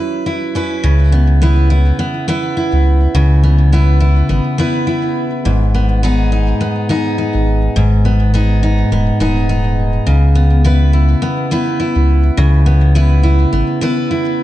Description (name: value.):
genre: folktronica.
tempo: 104 BPM.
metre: 4/4.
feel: swing 56% on 16ths.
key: C# minor.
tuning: A4 = 443 Hz.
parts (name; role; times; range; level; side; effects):
picked steel-string acoustic guitar; arpeggios; 0.0-14.4 s; G#2 to B4; -14 LUFS; equal; vintage 12-bit sampler grit, ping-pong delay.
warm sub bass; bass; 0.8-13.6 s; D#1 to C#2; -12 LUFS; equal; none.
room: light reverb, studio reverb.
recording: dark, warm production.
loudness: -11 LUFS.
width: side -14 dB against mid.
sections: 0.8-14.4 A section.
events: break 0.0-0.8.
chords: 0.0 F#7sus4; 0.8 C#m7; 5.5 G#m; 10.1 C#m7.